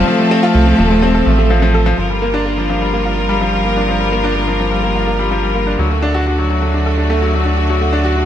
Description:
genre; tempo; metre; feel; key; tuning
piano and strings electronica; 126 BPM; 4/4; straight; G minor; A4 = 441 Hz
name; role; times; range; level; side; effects
dark cello; melody; 0.0-1.7 s; A3; -16 LUFS; left 1 dB; digital delay
bright symphonic string section; sustained chords; 0.0-8.3 s; D3 to Bb4; -20 LUFS; left 1 dB; none
bright baby grand piano; riff; 0.0-8.3 s; F3 to A4; -16 LUFS; left 1 dB; digital delay
round analog bass; bass; 0.0-8.3 s; Eb1 to D2; -17 LUFS; right 1 dB; none
room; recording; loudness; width
moderate lush hall reverb, RT60 2.1 s; none; -12 LUFS; side -10 dB against mid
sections
0.0-2.0 A section; 2.0-8.3 B section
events
none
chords
0.0 F; 2.0 Gm7; 5.8 D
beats
| 0.08 0.55 1.03 1.50 | 1.98 2.46 2.93 3.41 | 3.89 4.36 4.84 5.31 | 5.79 6.27 6.74 7.22 | 7.70 8.17

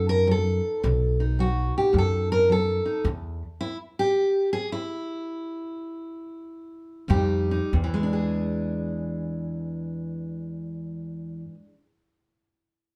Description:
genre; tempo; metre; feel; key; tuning
acoustic country blues, solo or duo; 93-109 BPM; 4/4; swing 65% on 8ths; E mixolydian; A4 = 440 Hz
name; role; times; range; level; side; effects
fingerpicked steel-string acoustic guitar; melody; 0.0-11.8 s; E2 to A#4; -28 LUFS; equal; none
upright bass; bass; 0.0-3.4, 7.1-11.4 s; B1 to F#2; -28 LUFS; equal; none
room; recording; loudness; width
moderate studio reverb, RT60 0.8 s; band playing live in one room; -26 LUFS; mono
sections
0.0-7.7 A section; 7.7-10.3 B section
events
slowing down 3.0-7.7; stop 3.0-7.1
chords
0.0 B7; 3.0 N.C.; 7.1 Fsus2; 7.7 E7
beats
0.29 | 0.84 1.39 1.94 2.50 | 3.05 3.60 4.16 4.73 | 5.30 5.89 6.49 7.11 | 7.74 8.39 9.04 9.68

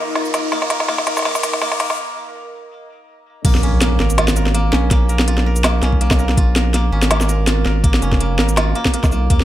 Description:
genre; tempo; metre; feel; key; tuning
half-time drum and bass; 164 BPM; 4/4; swing 55% on 16ths, half-time; Bb minor; A4 = 445 Hz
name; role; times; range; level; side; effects
dark analog pad; sustained chords; 0.0-3.4 s; Eb4 to Bb5; -28 LUFS; left 4 dB; chorus, sidechain pumping
koto; arpeggios; 0.0-9.4 s; Bb3 to Bb4; -23 LUFS; right 2 dB; tape echo
riser and impact; sound effects; 0.0-4.9 s; none; -26 LUFS; equal; none
organic electronic drum kit; drums; 0.2-9.4 s; crash cymbal, hi-hat, shaker, snare drum; -19 LUFS; equal; overdrive, high-pass filter on snare, high-pass filter on hats, high-pass filter on perc, high-pass filter on cymbals, high-pass filter on room
saturated sub bass; bass; 3.4-9.4 s; F1 to Eb2; -17 LUFS; equal; none
electronic kick drum; drums; 3.4-9.4 s; none; -15 LUFS; equal; none
room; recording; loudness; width
light reverb, digital ambience; high-pass filter; -14 LUFS; side -13 dB against mid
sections
0.0-3.4 A section; 3.4-9.4 B section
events
build-up 0.0-3.4; drum fill 0.0-2.0; riser 0.0-2.0; break 2.0-3.4; drop 3.4-9.4; impact 3.4-4.9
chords
0.0 Eb5; 3.4 Bbm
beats
0.15 | 0.52 0.89 1.25 1.62 | 1.99 2.35 2.72 3.08 | 3.45 3.81 4.18 4.55 | 4.91 5.28 5.64 6.01 | 6.38 6.74 7.11 7.47 | 7.84 8.20 8.57 8.94 | 9.30

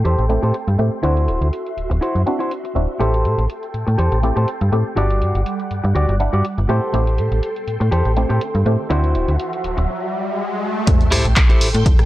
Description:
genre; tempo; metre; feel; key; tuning
filtered disco house; 122 BPM; 4/4; swing 54% on 16ths; A dorian; A4 = 441 Hz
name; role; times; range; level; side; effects
muted clav; accompaniment; 0.0-12.1 s; G3 to F#5; -24 LUFS; equal; phaser, sidechain pumping, low-pass filter
phased string machine; sustained chords; 0.0-12.1 s; G3 to D6; -27 LUFS; equal; ensemble chorus, phaser, vintage 12-bit sampler grit, sidechain pumping, low-pass filter
clean electric guitar; riff; 0.0-11.9 s; E4 to D5; -23 LUFS; equal; sidechain pumping, low-pass filter
slap-like FM bass; bass; 0.0-12.1 s; D1 to A2; -17 LUFS; equal; sidechain pumping, low-pass filter
punchy analog drum machine; drums; 0.1-12.1 s; handclaps, hi-hat, rim click; -24 LUFS; equal; sidechain pumping on hats, low-pass filter on hats, low-pass filter on snare
riser and sub drop; sound effects; 8.5-12.1 s; none; -24 LUFS; equal; none
electronic kick drum; drums; 10.9-12.0 s; none; -14 LUFS; equal; none
room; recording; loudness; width
light reverb; dry, gritty hardware recording; -16 LUFS; side -15 dB against mid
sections
0.0-10.9 A section; 10.9-12.1 B section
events
filter sweep 0.0-10.9; riser 8.5-10.9; break 9.9-10.9; drop 10.9-12.1; impact 10.9-12.1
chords
0.0 Am7; 1.0 D9; 3.0 Am7; 5.0 Em9/G; 6.7 Am7; 8.9 D9; 10.9 Am7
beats
0.05 0.55 | 1.04 1.53 2.02 2.51 | 3.00 3.50 3.99 4.48 | 4.97 5.46 5.96 6.45 | 6.94 7.43 7.92 8.41 | 8.91 9.40 9.89 10.38 | 10.87 11.37 11.86

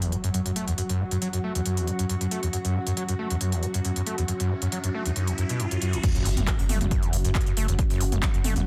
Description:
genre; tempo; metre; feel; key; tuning
driving peak-time techno; 137 BPM; 4/4; straight; F# minor; A4 = 440 Hz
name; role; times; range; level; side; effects
overdriven acid bass; riff; 0.0-8.6 s; F#1 to A3; -29 LUFS; equal; distortion, subtle chorus, cassette tape, sidechain pumping
swarming drone; drone; 0.0-6.1 s; F#3 to F#4; -36 LUFS; equal; built-in reverb, sidechain pumping
techno drum kit; drums; 0.0-8.6 s; crash cymbal, handclaps, hi-hat, toms; -34 LUFS; equal; none
impact and riser; sound effects; 0.0-7.8 s; none; -38 LUFS; equal; none
deep dark ambient pad; texture; 0.3-8.7 s; C#4 to F#5; -39 LUFS; equal; chorus, built-in reverb, sidechain pumping
electronic kick drum; drums; 6.0-8.3 s; none; -27 LUFS; equal; none
saturated sub bass; bass; 6.3-8.7 s; F#1; -29 LUFS; equal; tube saturation, sidechain pumping, low-pass filter
room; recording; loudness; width
moderate stone room reverb, RT60 1.5 s; dense, heavily limited modern master; -26 LUFS; mono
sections
0.0-6.0 A section; 6.0-8.7 B section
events
impact 0.0-0.8, 6.0-7.8; riser 3.7-6.0; drop 6.0-8.7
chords
0.0 F#5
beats
0.34 | 0.78 1.22 1.66 2.09 | 2.53 2.97 3.41 3.85 | 4.28 4.72 5.16 5.60 | 6.04 6.47 6.91 7.35 | 7.79 8.23 8.66

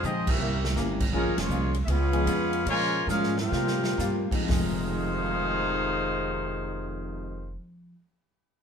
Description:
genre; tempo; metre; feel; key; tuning
jazz, big band swing; 114-164 BPM; 4/4; swing 65% on 8ths; F minor; A4 = 440 Hz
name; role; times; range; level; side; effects
clear trumpet section; melody; 0.0-7.6 s; Bb3 to Ab5; -30 LUFS; left 1 dB; none
bright trombone section; second line; 0.0-7.6 s; F2 to F4; -32 LUFS; equal; none
archtop guitar, miked and amplified; accompaniment; 0.0-8.1 s; Bb2 to G4; -36 LUFS; left 3 dB; none
upright bass; bass; 0.0-7.5 s; F1 to C3; -31 LUFS; right 1 dB; none
swinging big-band drum kit; drums; 0.0-4.7 s; crash cymbal, hi-hat, kick drum, ride cymbal, snare drum, toms; -31 LUFS; right 1 dB; none
dark grand piano; accompaniment; 1.1-7.6 s; F2 to G5; -34 LUFS; left 2 dB; none
room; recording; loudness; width
moderate studio reverb, RT60 0.6 s; band playing live in one room; -24 LUFS; side -7 dB against mid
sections
0.0-1.1 A section; 1.1-4.5 B section; 4.5-8.6 C section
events
drum fill 0.0-0.8, 3.1-4.0; band accent 0.2, 1.3; slowing down 1.1-4.5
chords
0.4 C7b9; 1.1 Bbm7; 1.9 Db7; 2.7 Bbm7; 3.5 C7sus4; 4.5 Fm9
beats
0.03 0.40 0.76 | 1.13 1.50 1.87 2.26 | 2.66 3.07 3.51 3.98 | 4.49 5.01 5.53 6.06 | 6.58 7.11 7.63

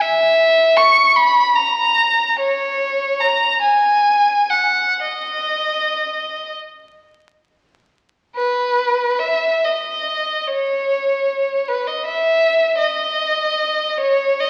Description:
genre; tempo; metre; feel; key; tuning
classical, free, expressive piece for unaccompanied violin; 27-56 BPM (dotted quarters); 6/8; rubato; unclear; A4 = 439 Hz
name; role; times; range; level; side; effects
warm violin; solo; 0.0-14.5 s; B4 to C#6; -17 LUFS; equal; none
room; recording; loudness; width
wet recital hall reverb, RT60 1.6 s; very old 78 rpm record, vinyl crackle; -17 LUFS; mono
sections
0.0-8.3 A section; 8.3-14.5 B section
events
none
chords
none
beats
| 0.01 1.17 | 2.37 3.62 | 5.02 6.57 | 8.35 9.65 | 10.88 12.04 | 13.18 14.38

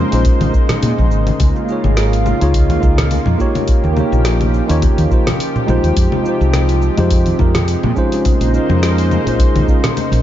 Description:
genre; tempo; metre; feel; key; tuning
sunset chillout; 105 BPM; 4/4; swing 55% on 16ths; unclear; A4 = 439 Hz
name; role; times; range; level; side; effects
tine electric piano; accompaniment; 0.0-9.8 s; Ab3 to Db5; -19 LUFS; right 1 dB; auto-pan, ping-pong delay
lush unison pad; sustained chords; 0.0-10.2 s; C3 to C5; -20 LUFS; equal; chorus
woody fretless electric bass; bass; 0.0-10.2 s; Ab1 to Bb2; -15 LUFS; equal; analog chorus
deep house drum kit; drums; 0.1-10.2 s; cabasa, congas, hi-hat, snare drum; -22 LUFS; left 3 dB; none
electronic kick drum; drums; 0.3-9.8 s; none; -15 LUFS; equal; none
congas and bongos; percussion; 0.4-10.2 s; none; -22 LUFS; right 1 dB; none
room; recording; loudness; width
light reverb, digital ambience; dark, warm production, nothing above 7.6 kHz; -12 LUFS; side -12 dB against mid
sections
0.0-10.2 A section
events
none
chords
0.0 Bbm11; 1.4 Db69; 3.7 Eb9; 6.0 Fm9; 8.3 Bbm11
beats
0.26 0.83 | 1.40 1.97 2.54 3.11 | 3.68 4.26 4.83 5.40 | 5.97 6.54 7.11 7.68 | 8.26 8.83 9.40 9.97

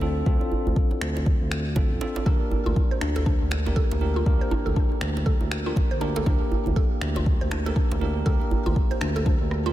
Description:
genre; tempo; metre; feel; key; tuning
afro house; 120 BPM; 4/4; swing 60% on 16ths; unclear; A4 = 440 Hz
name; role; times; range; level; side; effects
bell-like tine electric piano; stabs; 0.0-9.7 s; Bb3 to Bb4; -31 LUFS; right 2 dB; fast stereo tremolo, sidechain pumping, tape echo
smooth synth bass; bass; 0.0-9.7 s; D1 to D2; -27 LUFS; equal; sidechain pumping
djembe; percussion; 0.0-9.4 s; none; -30 LUFS; equal; none
electronic kick drum; drums; 0.3-9.4 s; none; -23 LUFS; equal; overdrive
electronic finger snaps and rim click; drums; 1.0-9.6 s; none; -35 LUFS; equal; none
mallet-like synth pluck; arpeggios; 2.3-9.7 s; D4 to C5; -32 LUFS; equal; chorus, sidechain pumping, tape echo
room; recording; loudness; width
light reverb; none; -21 LUFS; side -14 dB against mid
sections
0.0-9.7 A section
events
drum fill 9.5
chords
0.0 Dm7; 2.3 Gm/D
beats
| 0.27 0.77 1.27 1.77 | 2.27 2.77 3.27 3.77 | 4.27 4.77 5.27 5.77 | 6.27 6.77 7.27 7.77 | 8.27 8.77 9.27

